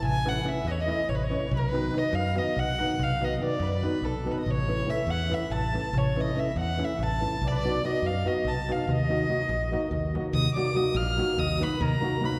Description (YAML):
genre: balkan folk, Balkan wedding band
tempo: 285 BPM (eighths)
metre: 7/8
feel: straight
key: unclear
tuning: A4 = 441 Hz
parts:
  - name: warm violin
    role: melody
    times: 0.0-12.4 s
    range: A4 to F6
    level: -34 LUFS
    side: equal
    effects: none
  - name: mellow accordion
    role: second line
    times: 0.0-12.4 s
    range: A4 to A5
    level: -38 LUFS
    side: equal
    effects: none
  - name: modern bright fingered electric bass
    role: bass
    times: 0.0-11.9 s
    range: A1 to F#2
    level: -33 LUFS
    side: equal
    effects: none
  - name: darbuka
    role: percussion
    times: 0.0-12.4 s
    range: none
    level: -35 LUFS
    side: equal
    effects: none
  - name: nylon-string guitar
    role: accompaniment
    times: 0.2-12.4 s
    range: D#3 to F#4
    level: -33 LUFS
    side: equal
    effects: none
room: wet concert hall reverb, RT60 1.8 s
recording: recorded in a church or concert hall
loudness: -27 LUFS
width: mono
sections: 0.0-10.4 A section; 10.4-12.4 B section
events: none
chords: 0.0 A; 1.5 B; 4.5 A; 7.4 B; 8.9 Ebm